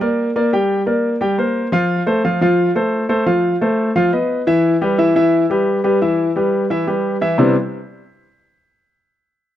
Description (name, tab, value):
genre	jazz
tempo	175 BPM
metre	4/4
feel	straight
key	C major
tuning	A4 = 442 Hz
part	warm concert grand piano	solo	0.0-7.5 s	C3 to G5	-14 LUFS	equal	slapback echo
room	light reverb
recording	recorded outdoors, with no room sound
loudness	-14 LUFS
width	side -12 dB against mid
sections	0.0-7.4 A section; 7.4-8.8 B section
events	none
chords	0.0 Gm; 1.2 C5; 1.9 F; 4.0 Badd11; 4.6 Em; 7.4 Cmaj9